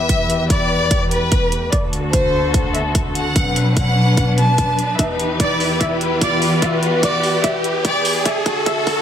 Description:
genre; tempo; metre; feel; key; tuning
heavy wobble dubstep; 147 BPM; 4/4; swing 53% on 16ths, half-time; E minor; A4 = 436 Hz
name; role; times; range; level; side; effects
rich chamber violin section; melody; 0.0-8.9 s; B4 to A5; -20 LUFS; equal; digital delay
rich studio string section; sustained chords; 0.0-9.0 s; D2 to B4; -19 LUFS; left 1 dB; vintage 12-bit sampler grit, sidechain pumping, low-pass filter
riser; sound effects; 1.0-9.0 s; none; -25 LUFS; right 1 dB; none
electronic hi-hat; drums; 0.1-9.0 s; none; -24 LUFS; right 1 dB; overdrive, high-pass filter on hats, high-pass filter on toms, high-pass filter on room
electronic kick drum; drums; 0.1-9.0 s; none; -20 LUFS; equal; none
room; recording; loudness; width
moderate lush hall reverb, RT60 1.7 s; high-pass filter; -15 LUFS; side -9 dB against mid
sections
0.0-9.0 A section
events
build-up 0.0-9.0; filter sweep on string section 0.0-9.0; riser 1.0-9.0; drum fill 5.0-9.0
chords
0.0 Em; 1.7 D; 3.4 Bm; 5.0 Em; 8.3 D

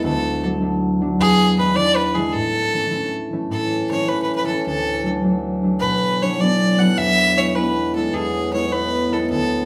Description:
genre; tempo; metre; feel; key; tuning
celtic folk, Celtic jig; 104 BPM (dotted quarters); 6/8; straight; A major; A4 = 440 Hz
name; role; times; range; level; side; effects
rich fiddle; melody; 0.0-9.7 s; G#4 to F#5; -23 LUFS; equal; none
concert harp; accompaniment; 0.0-9.7 s; D2 to E4; -22 LUFS; equal; none
pedal harmonium; drone; 3.5-9.7 s; A2 to B3; -28 LUFS; equal; none
room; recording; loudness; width
wet large studio reverb, RT60 0.9 s; band playing live in one room; -19 LUFS; mono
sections
0.0-3.5 A section; 3.5-9.7 A section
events
none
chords
0.0 D; 1.2 E7; 2.4 A; 4.7 D; 5.8 Bm; 7.0 E

